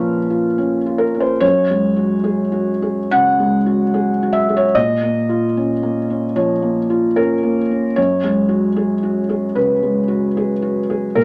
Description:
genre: neoclassical minimalist piano.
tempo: 74 BPM.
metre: 4/4.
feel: rubato.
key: unclear.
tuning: A4 = 436 Hz.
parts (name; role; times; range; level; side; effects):
felt-muted upright piano; solo; 0.0-11.2 s; F#2 to E#6; -17 LUFS; equal; none.
room: wet club reverb, RT60 0.5 s.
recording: none.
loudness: -17 LUFS.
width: mono.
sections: 0.0-1.4 A section; 1.4-11.2 B section.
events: none.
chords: 0.0 A#m; 1.4 F#sus2; 4.7 A#m; 8.0 F#sus2.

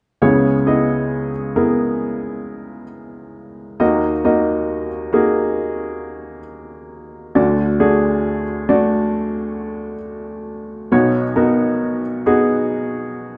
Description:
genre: folk.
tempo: 67 BPM.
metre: 4/4.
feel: straight.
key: C# dorian.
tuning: A4 = 439 Hz.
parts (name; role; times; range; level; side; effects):
warm upright piano; solo; 0.2-13.4 s; B1 to D#5; -19 LUFS; equal; none.
room: wet large studio reverb, RT60 0.9 s.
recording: heard from further back in the room, nothing above 10.3 kHz.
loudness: -18 LUFS.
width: mono.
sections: 0.2-13.4 A section.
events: none.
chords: 0.2 C#m7; 3.8 D#m; 7.4 D; 10.9 Badd9.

